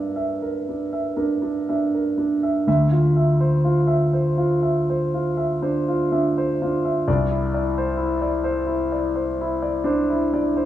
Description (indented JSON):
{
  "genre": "classical, impressionist solo piano",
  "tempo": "39-44 BPM (dotted quarters)",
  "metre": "9/8",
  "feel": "rubato",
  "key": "G dorian",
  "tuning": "A4 = 440 Hz",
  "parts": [
    { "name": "warm grand piano", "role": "solo", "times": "0.0-10.7 s", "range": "C2 to E5", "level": "-19 LUFS", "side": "equal", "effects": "none" }
  ],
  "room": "wet recital hall reverb, RT60 1.5 s",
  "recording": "none",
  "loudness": "-19 LUFS",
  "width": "side -12 dB against mid",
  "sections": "0.0-10.7 A section",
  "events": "none",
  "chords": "0.0 Gm6; 2.7 Dm9; 7.1 Cadd9",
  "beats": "1.17 | 2.67 4.14 5.64 | 7.07 8.44 9.85"
}